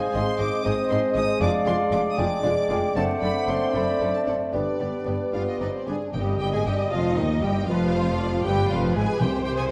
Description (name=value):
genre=quick classical-period movement for symphony orchestra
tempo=78 BPM (dotted quarters)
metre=6/8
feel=straight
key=unclear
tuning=A4 = 442 Hz
part: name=rich studio violin section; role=melody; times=0.0-9.6 s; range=C5 to Eb6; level=-37 LUFS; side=equal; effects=none
part: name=dark clarinet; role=second line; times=0.0-5.8 s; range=B4 to D5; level=-32 LUFS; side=equal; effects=none
part: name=dark cor anglais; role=second line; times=0.0-5.8 s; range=D5 to Eb5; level=-37 LUFS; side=equal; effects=none
part: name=mellow hollow silver concert flute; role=second line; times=0.0-5.7 s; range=B4 to G5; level=-32 LUFS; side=equal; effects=none
part: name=warm bassoon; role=accompaniment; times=0.0-5.9 s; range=G3 to A3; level=-31 LUFS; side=equal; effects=none
part: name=mellow French horn section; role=sustained chords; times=0.0-9.1 s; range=Eb3 to D4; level=-31 LUFS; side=equal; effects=none
part: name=rich studio violin section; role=second line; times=0.1-9.6 s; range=Eb4 to Eb5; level=-36 LUFS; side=equal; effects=none
part: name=clear studio cello section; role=bass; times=0.1-9.7 s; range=Eb2 to C3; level=-33 LUFS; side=equal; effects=none
part: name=rich studio double bass section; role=bass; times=0.1-9.7 s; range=F1 to Eb2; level=-32 LUFS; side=equal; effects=none
part: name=rich studio viola section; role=accompaniment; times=0.2-9.7 s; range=B3 to Eb5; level=-36 LUFS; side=equal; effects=none
part: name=timpani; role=percussion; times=6.1-6.9, 9.2-9.7 s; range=C3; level=-32 LUFS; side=equal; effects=none
room=wet recital hall reverb, RT60 1.7 s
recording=vinyl crackle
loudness=-24 LUFS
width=mono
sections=0.0-6.1 A section; 6.1-9.7 B section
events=none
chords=0.0 Ab; 1.4 Ddim/F; 2.9 D7/F#; 4.5 G; 6.1 F7sus2; 7.7 G7/F; 9.2 C5